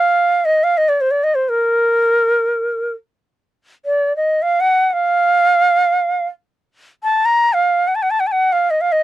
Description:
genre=Turkish makam ensemble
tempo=free time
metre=none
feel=none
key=F makam hicaz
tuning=A4 = 440 Hz
part: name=bright reedy ney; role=solo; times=0.0-9.0 s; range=Bb4 to Bb5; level=-13 LUFS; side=right 1 dB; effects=none
room=light reverb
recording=dry, close 1970s-style studio recording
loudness=-14 LUFS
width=side -14 dB against mid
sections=0.0-9.0 A section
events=none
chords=none

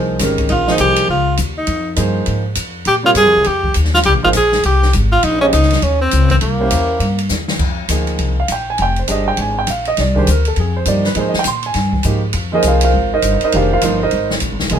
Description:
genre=modal jazz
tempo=203 BPM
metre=4/4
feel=swing 62% on 8ths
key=Bb dorian, F dorian from 7.6 s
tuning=A4 = 440 Hz
part: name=warm baby grand piano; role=accompaniment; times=0.0-14.8 s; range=C3 to C6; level=-17 LUFS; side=right 2 dB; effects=none
part: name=upright bass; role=bass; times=0.0-14.8 s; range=F1 to Bb2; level=-17 LUFS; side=left 1 dB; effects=none
part: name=open jazz drum kit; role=drums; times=0.2-14.8 s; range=crash cymbal, hi-hat, kick drum, ride cymbal, snare drum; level=-21 LUFS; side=equal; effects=none
part: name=warm tenor saxophone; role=melody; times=0.5-7.5 s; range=Bb3 to Ab4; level=-14 LUFS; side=right 1 dB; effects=none
room=moderate studio reverb, RT60 0.6 s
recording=minimal, uncompressed stereo recording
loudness=-13 LUFS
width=side -8 dB against mid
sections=0.0-7.6 A section; 7.6-14.8 B section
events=drum fill 7.3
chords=0.0 Bbm9; 6.4 C7b9; 7.6 Fm11

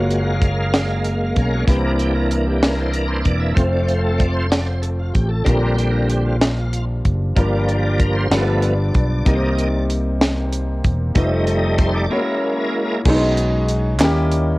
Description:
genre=slow gospel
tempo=63 BPM (dotted quarters)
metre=6/8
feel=straight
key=unclear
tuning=A4 = 443 Hz
part: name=clear grand piano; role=accompaniment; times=0.0-14.6 s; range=G2 to Db5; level=-24 LUFS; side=left 2 dB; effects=cassette tape
part: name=bright tonewheel organ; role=sustained chords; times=0.0-13.0 s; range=D3 to F5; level=-22 LUFS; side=right 1 dB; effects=slow rotary speaker, chorus vibrato, cassette tape
part: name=dark French horn section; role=sustained chords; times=0.0-13.0 s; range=Eb3 to F5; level=-32 LUFS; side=equal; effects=none
part: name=fingered electric bass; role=bass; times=0.0-14.6 s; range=E1 to D#2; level=-20 LUFS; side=equal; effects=none
part: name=tight funk drum kit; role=drums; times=0.1-14.5 s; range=crash cymbal, hi-hat, kick drum, snare drum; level=-18 LUFS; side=equal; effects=cassette tape
part: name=metal-body resonator slide guitar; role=melody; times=13.1-14.6 s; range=F#3 to G4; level=-20 LUFS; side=right 1 dB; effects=cassette tape
part: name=group handclap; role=percussion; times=14.0-14.3 s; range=none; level=-25 LUFS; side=right 2 dB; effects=none
room=studio reverb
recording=home recording on cassette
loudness=-16 LUFS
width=side -21 dB against mid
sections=0.0-13.1 A section; 13.1-14.6 B section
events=tonewheel organ solo 0.0-13.1; break 12.1-13.1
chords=0.0 Gbmaj7; 1.7 C7; 3.6 F; 5.5 Bb6; 7.4 Gm7; 8.3 G7; 9.3 Cm7; 11.2 F7; 12.1 Gb7; 13.1 B69; 14.0 D#7b9

